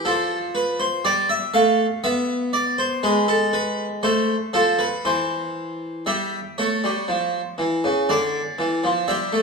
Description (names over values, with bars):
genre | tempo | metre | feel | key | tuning
classical, baroque-style two-part invention for harpsichord | 60 BPM | 4/4 | straight | A minor | A4 = 440 Hz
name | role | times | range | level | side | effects
harpsichord | solo | 0.0-9.4 s | C#3 to F5 | -19 LUFS | equal | none
room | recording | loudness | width
moderate recital hall reverb, RT60 1.8 s | small room ambience | -19 LUFS | side -4 dB against mid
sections
0.0-6.1 A section; 6.1-9.4 B section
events
none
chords
0.1 Bm7b5/F; 2.0 E7/B; 4.0 Am; 6.1 A7/G; 8.1 Dm